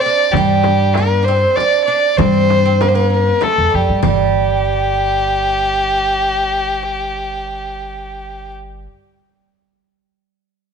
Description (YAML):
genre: Arabic maqam ensemble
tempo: 97 BPM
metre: 3/4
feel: straight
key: G maqam rast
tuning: A4 = 438 Hz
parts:
  - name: warm violin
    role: melody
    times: 0.0-8.5 s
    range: G4 to D5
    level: -16 LUFS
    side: left 3 dB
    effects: none
  - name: oud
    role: second line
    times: 0.0-8.8 s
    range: G3 to D4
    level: -19 LUFS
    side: right 12 dB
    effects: none
  - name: upright bass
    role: bass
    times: 0.3-8.8 s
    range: G1 to G2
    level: -19 LUFS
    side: left 1 dB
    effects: none
  - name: darbuka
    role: percussion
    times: 0.3-4.3 s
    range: none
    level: -22 LUFS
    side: right 13 dB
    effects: none
  - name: frame drum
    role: percussion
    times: 0.3-4.3 s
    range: none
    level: -23 LUFS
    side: left 10 dB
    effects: none
room: light reverb, small room ambience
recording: 1960s-style stereo with parts hard left and right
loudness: -12 LUFS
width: side -6 dB against mid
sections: 0.0-4.0 A section; 4.0-7.8 B section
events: none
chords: none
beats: | 0.34 0.96 1.57 | 2.19 2.81 3.43 | 4.05 4.66 5.28 | 5.90 6.52 7.14